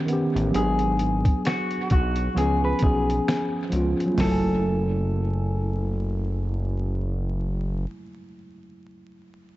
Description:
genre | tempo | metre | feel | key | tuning
lo-fi hip hop | 66 BPM | 4/4 | swing 58% on 16ths | F# minor | A4 = 441 Hz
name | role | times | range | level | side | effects
mellow tine electric piano | accompaniment | 0.0-9.6 s | D#3 to G#5 | -27 LUFS | equal | medium stereo tremolo, cassette tape, low-pass filter, dub echo
dusty soul sampler-style drum kit | drums | 0.1-4.4 s | finger snaps, hi-hat, kick drum, snare drum, toms | -26 LUFS | equal | vintage 12-bit sampler grit, dub echo
fat analog bass | bass | 0.4-7.9 s | F#1 to C#2 | -25 LUFS | equal | none
electric guitar through a small old amp | melody | 0.6-6.9 s | F#4 to B4 | -28 LUFS | left 1 dB | low-pass filter, dub echo
room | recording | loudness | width
moderate spring reverb, RT60 2.7 s | echo-heavy mix, vinyl crackle, nothing above 7.8 kHz | -22 LUFS | side -16 dB against mid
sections
0.0-4.2 A section; 4.2-7.8 B section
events
none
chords
0.0 D#aug7; 0.5 G#m7b5; 2.4 C#7; 4.2 F#m9

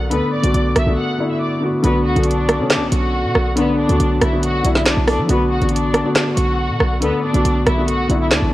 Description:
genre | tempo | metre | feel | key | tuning
hip hop, drill | 139 BPM | 4/4 | half-time | B minor | A4 = 438 Hz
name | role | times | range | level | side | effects
clear studio violin section | melody | 0.0-8.5 s | B3 to F#6 | -23 LUFS | equal | low-pass filter
felt-muted upright piano | accompaniment | 0.0-8.5 s | D3 to A4 | -19 LUFS | left 1 dB | low-pass filter
short 808-style bass | bass | 0.0-8.5 s | A1 to F#3 | -19 LUFS | equal | none
drill drum kit | drums | 0.1-8.4 s | handclaps, hi-hat, rim click, snare drum | -19 LUFS | right 1 dB | overdrive
room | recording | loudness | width
light reverb, small room ambience | worn, warbling old tape, cassette tape, warbly pitch drift | -15 LUFS | side -16 dB against mid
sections
0.0-1.8 A section; 1.8-8.5 B section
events
break 1.0-1.8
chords
0.0 Bm7

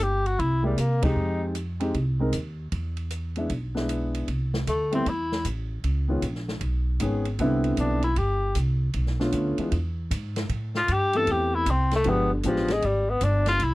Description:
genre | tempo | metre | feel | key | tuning
jazz, small-group swing and bop | 154 BPM | 4/4 | swing 65% on 8ths | A minor from 4.3 s | A4 = 440 Hz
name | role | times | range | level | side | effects
warm tenor saxophone | melody | 0.0-1.4, 4.7-5.5, 7.8-13.7 s | D3 to A4 | -25 LUFS | left 2 dB | none
upright bass | bass | 0.0-13.7 s | G1 to C3 | -26 LUFS | equal | none
open jazz drum kit | drums | 0.0-13.7 s | hi-hat, kick drum, ride cymbal, snare drum | -32 LUFS | equal | none
warm grand piano | accompaniment | 0.6-12.7 s | D3 to Bb4 | -27 LUFS | equal | none
room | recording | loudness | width
little or no reverb | dry, close 1970s-style studio recording | -23 LUFS | side -19 dB against mid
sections
0.0-4.3 A section; 4.3-13.7 B section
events
band accent 1.0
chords
0.4 C7b13; 1.2 Fm9; 2.7 E7; 4.3 Am; 5.8 C#7sus2; 7.4 Cmaj7; 8.9 Bm7b5; 9.7 E; 10.5 Am7; 12.1 G7b9

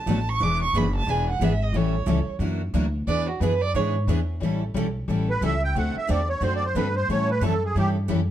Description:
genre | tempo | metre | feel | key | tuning
acoustic string swing (jazz manouche) | 180 BPM | 4/4 | swing 60% on 8ths | A mixolydian | A4 = 439 Hz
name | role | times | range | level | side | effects
warm violin | second line | 0.0-3.9 s | F#4 to D6 | -27 LUFS | right 4 dB | none
picked steel-string acoustic guitar | accompaniment | 0.1-8.2 s | B2 to A4 | -28 LUFS | left 5 dB | none
picked steel-string acoustic guitar | accompaniment | 0.1-8.2 s | B2 to B4 | -31 LUFS | right 7 dB | none
upright bass | bass | 0.1-8.3 s | E1 to A2 | -25 LUFS | equal | none
musette accordion | melody | 5.3-7.9 s | G4 to G5 | -26 LUFS | right 2 dB | plate reverb
room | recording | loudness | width
moderate studio reverb, RT60 0.8 s | dark, warm production | -21 LUFS | side -11 dB against mid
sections
0.0-4.4 A section; 4.4-8.3 A section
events
violin solo 0.0-4.4; accordion solo 4.4-8.3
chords
0.4 E7; 1.7 A7; 2.4 F#aug7; 3.1 E7; 4.4 A7; 5.8 D7; 7.1 A7

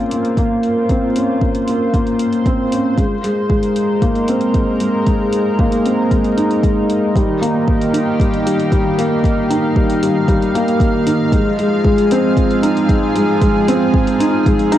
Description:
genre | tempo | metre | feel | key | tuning
piano and strings electronica | 115 BPM | 4/4 | straight | unclear | A4 = 437 Hz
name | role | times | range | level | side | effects
lush unison pad | sustained chords | 0.0-14.8 s | Eb3 to F5 | -21 LUFS | equal | chorus, plate reverb
felt-muted upright piano | riff | 0.0-14.8 s | G3 to Eb4 | -15 LUFS | equal | analog delay
electronic hi-hat | drums | 0.1-14.8 s | none | -33 LUFS | left 1 dB | cassette tape
electronic kick drum | drums | 0.4-14.6 s | none | -17 LUFS | equal | cassette tape
room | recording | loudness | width
moderate studio reverb, RT60 0.6 s | home recording on cassette | -13 LUFS | side -12 dB against mid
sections
0.0-14.8 A section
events
build-up 0.0-14.8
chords
0.0 Bbmadd9; 3.0 Abadd9; 7.2 Ebadd9; 11.3 Fm7

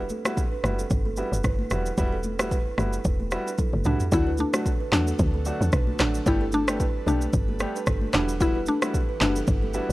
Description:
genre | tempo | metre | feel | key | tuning
afrobeats | 112 BPM | 4/4 | swing 55% on 16ths | E minor | A4 = 440 Hz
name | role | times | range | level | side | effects
kalimba | riff | 0.0-9.9 s | B3 to D5 | -34 LUFS | right 6 dB | tape echo
woody log drum bass | bass | 0.0-9.9 s | E1 to E2 | -27 LUFS | equal | none
afro-pop drum kit | drums | 0.1-9.9 s | handclaps, kick drum, rim click, shaker, toms | -26 LUFS | equal | none
congas | percussion | 0.1-9.7 s | none | -36 LUFS | left 2 dB | none
warm concert grand piano | accompaniment | 0.3-9.9 s | F#3 to G4 | -32 LUFS | equal | none
mallet-like synth pluck | melody | 3.9-9.9 s | D4 to E4 | -27 LUFS | left 1 dB | chorus, tape echo
airy breathy pad | sustained chords | 4.5-9.9 s | D3 to F#5 | -40 LUFS | equal | none
room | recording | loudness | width
little or no reverb | dry, gritty hardware recording | -22 LUFS | side -18 dB against mid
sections
0.0-4.1 A section; 4.1-9.9 B section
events
drum fill 3.6-4.1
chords
0.0 Emadd9; 4.1 D; 6.3 Gadd9; 8.1 Emadd9

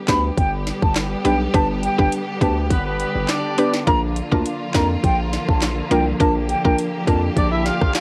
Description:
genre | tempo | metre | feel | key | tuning
dancehall | 103 BPM | 4/4 | straight | unclear | A4 = 442 Hz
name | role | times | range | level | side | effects
clear studio string section | sustained chords | 0.0-8.0 s | D3 to G4 | -29 LUFS | equal | cassette tape
mellow wooden flute | melody | 0.1-7.2 s | G5 to B5 | -26 LUFS | equal | cassette tape, analog delay
mallet-like synth pluck | accompaniment | 0.1-7.3 s | Bb3 to B4 | -24 LUFS | equal | chorus, cassette tape
hard-hitting 808-style bass | bass | 0.1-7.9 s | G1 to F2 | -26 LUFS | equal | none
island pop drum kit | drums | 0.1-8.0 s | handclaps, hi-hat, kick drum, rim click, snare drum | -23 LUFS | equal | cassette tape
clear horn section | second line | 2.7-3.7, 7.4-8.0 s | B3 to F5 | -27 LUFS | equal | cassette tape, analog delay
room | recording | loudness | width
light reverb, small room ambience | home recording on cassette | -20 LUFS | mono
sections
0.0-8.0 A section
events
none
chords
0.0 G; 3.9 Bb

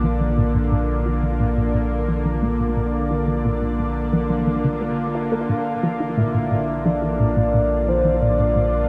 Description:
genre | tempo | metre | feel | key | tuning
ambient, sequencer-driven space music | 88 BPM | 4/4 | straight | Bb lydian | A4 = 442 Hz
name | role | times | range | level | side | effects
lush unison pad | sustained chords | 0.0-8.9 s | D3 to D5 | -25 LUFS | equal | chorus, shimmer reverb
resonant blip pluck | riff | 0.0-8.7 s | Bb2 to F4 | -26 LUFS | equal | phaser, ensemble chorus, tape echo
round analog bass | bass | 0.0-8.9 s | Bb1 | -28 LUFS | equal | none
soft octave-layered synth lead | melody | 5.5-8.9 s | C5 to F5 | -25 LUFS | equal | chorus, phaser, shimmer reverb, tape echo
room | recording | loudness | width
moderate spring reverb, RT60 2.3 s | echo-heavy mix, cassette tape | -21 LUFS | mono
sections
0.0-8.9 A section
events
filter sweep on synth arpeggio sound 0.0-8.9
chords
0.0 Bb

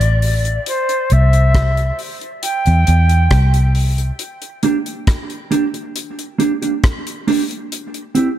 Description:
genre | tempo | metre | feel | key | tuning
dub reggae | 68 BPM | 4/4 | straight | unclear | A4 = 440 Hz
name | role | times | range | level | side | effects
silver concert flute | melody | 0.0-3.7 s | C5 to G5 | -20 LUFS | equal | dub echo
vintage muted fingered electric bass | bass | 0.0-4.1 s | A1 to E2 | -12 LUFS | equal | none
damped 70s drum kit | drums | 0.0-8.4 s | hi-hat, kick drum, rim click | -20 LUFS | equal | none
mellow electric guitar | accompaniment | 4.6-8.3 s | Bb3 to G4 | -18 LUFS | right 4 dB | dub echo
room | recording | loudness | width
light reverb, studio reverb | none | -14 LUFS | side -12 dB against mid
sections
0.0-8.4 A section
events
break 0.0-4.2, 4.2-8.4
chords
0.0 N.C.; 0.7 C; 4.2 Gm; 7.7 C

